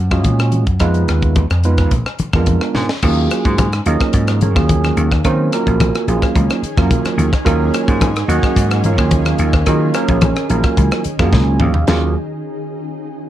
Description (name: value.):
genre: electric jazz fusion.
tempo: 108 BPM.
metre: 4/4.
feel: straight.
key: Eb minor.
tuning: A4 = 436 Hz.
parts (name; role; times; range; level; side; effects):
vintage slap bass; bass; 0.0-12.1 s; Bb1 to Eb3; -16 LUFS; equal; none.
overdriven tine electric piano; accompaniment; 0.1-12.1 s; Gb3 to Ab5; -18 LUFS; right 3 dB; analog chorus.
tight funk drum kit; drums; 0.1-12.0 s; china cymbal, crash cymbal, hi-hat, kick drum, rim click, snare drum, toms; -18 LUFS; equal; none.
congas; percussion; 0.3-12.1 s; none; -20 LUFS; left 2 dB; none.
shimmering ambient pad; sustained chords; 3.8-12.1 s; Eb3 to Ab4; -26 LUFS; equal; chorus, built-in reverb.
room: little or no reverb.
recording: dark, warm production.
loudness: -13 LUFS.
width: side -12 dB against mid.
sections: 0.0-3.0 A section; 3.0-11.9 B section; 11.9-13.3 C section.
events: drum fill 2.8, 11.3-11.9; tine electric piano fill 11.1-11.9.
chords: 0.0 Gbmaj9; 0.8 Fm7b5; 1.9 Bb7b9; 3.0 Ebm11.